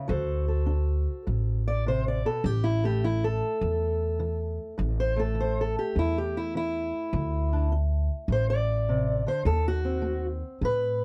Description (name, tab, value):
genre	acoustic country blues, solo or duo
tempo	103 BPM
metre	4/4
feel	swing 67% on 8ths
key	unclear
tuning	A4 = 440 Hz
part	fingerpicked steel-string acoustic guitar	melody	0.0-11.0 s	E2 to D5	-31 LUFS	equal	none
part	upright bass	bass	0.1-11.0 s	A1 to A2	-29 LUFS	equal	none
room	little or no reverb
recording	dry, close 1970s-style studio recording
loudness	-27 LUFS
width	mono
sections	0.0-11.0 A section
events	steel-string acoustic guitar solo 0.0-11.0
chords	0.1 D7; 2.4 A5; 7.1 D5; 9.5 D#dim7